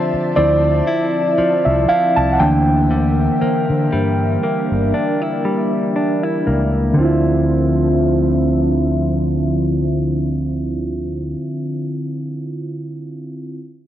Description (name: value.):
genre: R&B.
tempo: 59 BPM.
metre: 4/4.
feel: swing 54% on 16ths.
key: D minor.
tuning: A4 = 441 Hz.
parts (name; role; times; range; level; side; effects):
glassy FM pad; sustained chords; 0.0-11.3 s; F3 to A5; -24 LUFS; equal; ensemble chorus, built-in reverb.
direct-recorded clean electric guitar; arpeggios; 0.0-11.5 s; D3 to F4; -21 LUFS; left 1 dB; tape echo.
fingered electric bass; bass; 0.1-11.3 s; G1 to D3; -20 LUFS; equal; none.
muted felt-like synth keys; accompaniment; 0.4-13.6 s; D3 to A5; -18 LUFS; right 1 dB; chorus.
room: light reverb.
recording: dry, gritty hardware recording, low-pass filter.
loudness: -15 LUFS.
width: side -11 dB against mid.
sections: 0.0-7.0 A section; 7.0-11.0 B section.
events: synth keys solo 0.0-7.0; filter sweep 0.0-7.0.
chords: 0.0 Dm9; 2.4 C9/D; 7.0 Dm9.